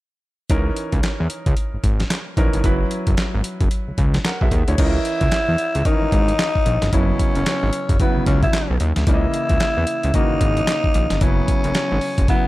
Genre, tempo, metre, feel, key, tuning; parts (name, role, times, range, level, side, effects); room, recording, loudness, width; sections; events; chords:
R&B, new jack swing; 112 BPM; 4/4; swing 61% on 16ths; C# dorian; A4 = 441 Hz
warm concert grand piano; accompaniment; 0.5-12.5 s; C#3 to F#5; -25 LUFS; equal
fat analog bass; bass; 0.5-12.5 s; F#1 to E2; -20 LUFS; equal
dusty soul sampler-style drum kit; drums; 0.5-12.4 s; crash cymbal, handclaps, hi-hat, kick drum, snare drum; -20 LUFS; equal
growling tenor saxophone; melody; 4.8-12.5 s; B3 to E4; -22 LUFS; equal
digital ambience; -17 LUFS; side -17 dB against mid
0.5-4.8 A section; 4.8-12.5 B section
0.5 C#m69; 2.6 F#7sus4; 4.8 C#m69; 6.9 F#7sus4; 9.1 C#m69; 11.2 F#7sus4